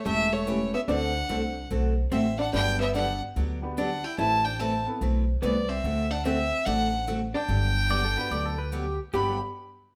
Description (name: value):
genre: country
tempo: 145 BPM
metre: 4/4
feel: swing 65% on 8ths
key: G major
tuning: A4 = 440 Hz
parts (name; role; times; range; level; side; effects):
- clear fiddle; melody; 0.0-9.4 s; C#5 to B5; -31 LUFS; equal; none
- archtop guitar, miked and amplified; second line; 0.0-9.4 s; A3 to G4; -34 LUFS; equal; none
- picked steel-string acoustic guitar; accompaniment; 0.1-9.4 s; G2 to B4; -34 LUFS; equal; none
- upright bass; bass; 0.1-9.4 s; E1 to D2; -32 LUFS; equal; none
- clear upright piano; accompaniment; 0.5-5.0, 8.2-9.4 s; B3 to C5; -40 LUFS; equal; none
- pedal steel guitar; second line; 7.9-9.4 s; G4 to D5; -36 LUFS; equal; none
room: moderate stone room reverb, RT60 1.0 s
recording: band playing live in one room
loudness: -27 LUFS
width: mono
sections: 0.0-9.1 A section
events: none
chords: 0.0 A7; 0.9 D7; 2.5 Gmaj7; 4.2 Amadd9; 5.8 D7; 7.5 Gmaj7